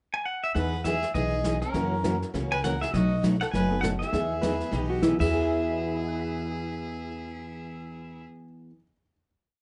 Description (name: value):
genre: country, western swing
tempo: 202 BPM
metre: 4/4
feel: swing 60% on 8ths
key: E major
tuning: A4 = 440 Hz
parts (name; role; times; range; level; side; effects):
- pedal steel guitar; melody; 0.1-8.3 s; A#4 to G#5; -33 LUFS; equal; none
- honky-tonk upright piano; accompaniment; 0.5-9.2 s; E2 to B6; -39 LUFS; equal; none
- picked steel-string acoustic guitar; accompaniment; 0.5-8.7 s; B2 to G#4; -33 LUFS; equal; none
- clear fiddle; second line; 0.6-8.3 s; C#4 to B4; -40 LUFS; equal; none
- upright bass; bass; 0.6-8.3 s; F#1 to F#2; -34 LUFS; equal; none
- jazz brush drum kit; drums; 0.6-5.3 s; brushed snare drum, crash cymbal, hi-hat, kick drum, snare drum; -39 LUFS; equal; none
- clean lap steel guitar; second line; 4.4-8.3 s; E4 to B4; -33 LUFS; equal; none
room: moderate club reverb, RT60 0.5 s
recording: nothing above 10.7 kHz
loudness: -27 LUFS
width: mono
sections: 0.0-0.6 pickup bar; 0.6-5.3 A section; 5.3-7.7 final chord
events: none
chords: 0.0 N.C.; 0.6 Emaj7; 1.7 F#7; 2.9 B7; 4.1 Emaj7; 5.2 E